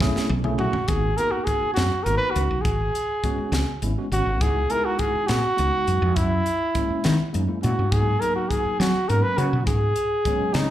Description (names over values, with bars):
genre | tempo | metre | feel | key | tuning
electric jazz fusion | 68 BPM (dotted quarters) | 6/8 | straight | G# minor | A4 = 442 Hz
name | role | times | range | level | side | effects
tine electric piano | accompaniment | 0.0-10.6 s | F#3 to G#4 | -30 LUFS | equal | fast stereo tremolo, slapback echo
woody fretless electric bass | bass | 0.0-10.7 s | G#1 to F#3 | -23 LUFS | equal | none
crisp fusion drum kit | drums | 0.0-10.7 s | hi-hat, kick drum, snare drum, toms | -27 LUFS | equal | none
dark trumpet | melody | 0.6-10.7 s | D#4 to B4 | -24 LUFS | right 1 dB | slapback echo
room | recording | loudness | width
light reverb, small room ambience | live gig heard through the venue's PA, club reverb | -20 LUFS | side -12 dB against mid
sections
0.9-10.7 A section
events
drum fill 0.0-0.9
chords
0.0 B9sus4; 0.9 G#m9; 2.7 E6/G# (rootless); 4.4 C#m9; 6.2 F#9; 7.9 G#m9; 9.7 G#m11